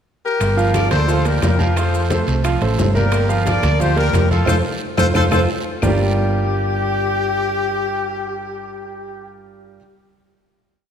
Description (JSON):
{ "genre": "latin, salsa", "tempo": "177 BPM", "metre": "4/4", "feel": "straight", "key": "G minor", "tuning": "A4 = 439 Hz", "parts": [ { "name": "brilliant horn section", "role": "melody", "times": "0.2-9.3 s", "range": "F4 to D5", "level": "-21 LUFS", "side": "left 4 dB", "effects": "none" }, { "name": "hollow-body short-scale fingered electric bass", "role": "bass", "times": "0.4-9.8 s", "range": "G1 to F2", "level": "-19 LUFS", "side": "equal", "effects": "none" }, { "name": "bongos", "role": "percussion", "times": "0.4-5.9 s", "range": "none", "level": "-27 LUFS", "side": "left 5 dB", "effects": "none" }, { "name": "claves", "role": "percussion", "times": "0.4-5.9 s", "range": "none", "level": "-36 LUFS", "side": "left 6 dB", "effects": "none" }, { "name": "congas", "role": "percussion", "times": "0.4-5.9 s", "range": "none", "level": "-26 LUFS", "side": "left 2 dB", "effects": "none" }, { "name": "guiro", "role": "percussion", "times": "0.4-5.9 s", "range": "none", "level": "-35 LUFS", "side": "right 4 dB", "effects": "none" }, { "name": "maracas", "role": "percussion", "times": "0.4-5.9 s", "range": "none", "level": "-37 LUFS", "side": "left 7 dB", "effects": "none" }, { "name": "timbales", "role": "percussion", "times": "0.4-5.9 s", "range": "none", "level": "-29 LUFS", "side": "right 5 dB", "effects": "none" }, { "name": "bright grand piano", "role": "accompaniment", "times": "0.6-9.8 s", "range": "F3 to F5", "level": "-23 LUFS", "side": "right 5 dB", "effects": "none" } ], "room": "moderate scoring stage reverb, RT60 2.1 s", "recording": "none", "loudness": "-15 LUFS", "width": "side -8 dB against mid", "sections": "0.0-0.4 pickup bar; 0.4-5.8 montuno (vamp); 5.8-8.6 final chord", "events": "drum fill 4.5-5.8; band accent 4.5-5.8", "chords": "0.4 Gm7; 1.8 F; 3.1 Gm7; 4.5 F; 5.8 Gm7", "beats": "0.06 | 0.40 0.74 1.08 1.43 | 1.76 2.10 2.44 2.78 | 3.12 3.46 3.80 4.14 | 4.48 4.82 5.16 5.49 | 5.83 6.17 6.51 6.85 | 7.19 7.53 7.87 8.21" }